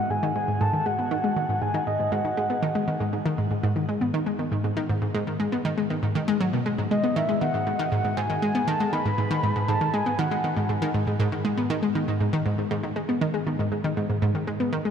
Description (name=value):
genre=ambient, sequencer-driven space music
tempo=119 BPM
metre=4/4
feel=straight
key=G# phrygian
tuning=A4 = 440 Hz
part: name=soft octave-layered synth lead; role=melody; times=0.0-2.6, 6.9-10.7 s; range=D#5 to B5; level=-28 LUFS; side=equal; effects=chorus, cassette tape, shimmer reverb, tape echo
part: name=analog pluck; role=riff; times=0.0-14.9 s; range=G#2 to B3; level=-24 LUFS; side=equal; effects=chorus, shimmer reverb, tape echo
room=wet cathedral reverb, RT60 6.0 s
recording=in a vast, echoing space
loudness=-23 LUFS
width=side -7 dB against mid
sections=0.0-14.9 A section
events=none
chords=0.0 G#7(no3)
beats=0.36 | 0.86 1.36 1.87 2.37 | 2.88 3.38 3.88 4.39 | 4.89 5.40 5.90 6.41 | 6.91 7.42 7.92 8.42 | 8.93 9.43 9.94 10.44 | 10.94 11.45 11.95 12.46 | 12.96 13.46 13.97 14.47